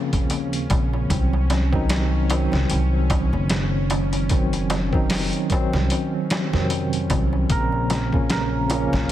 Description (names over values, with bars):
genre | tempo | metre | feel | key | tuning
trip hop | 75 BPM | 4/4 | swing 57% on 16ths | unclear | A4 = 440 Hz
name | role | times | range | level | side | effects
tine electric piano | accompaniment | 0.0-9.1 s | C3 to Eb4 | -24 LUFS | equal | medium stereo tremolo, vintage 12-bit sampler grit, low-pass filter, tape echo
bowed-like drone | texture | 0.0-9.1 s | Db4 | -32 LUFS | right 2 dB | built-in reverb
upright bass | bass | 0.1-9.1 s | Gb1 to F2 | -23 LUFS | equal | none
trip hop sampler-style drum kit | drums | 0.1-9.1 s | hi-hat, kick drum, snare drum | -24 LUFS | equal | none
darbuka | percussion | 0.1-9.1 s | none | -32 LUFS | right 1 dB | none
santur | melody | 7.5-9.1 s | Bb4 | -27 LUFS | right 2 dB | tape echo
room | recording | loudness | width
light reverb, studio reverb | heavily compressed radio sound | -19 LUFS | side -12 dB against mid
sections
0.0-9.1 A section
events
none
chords
0.0 Bbmadd9; 1.1 Cdim; 7.5 Bbmadd9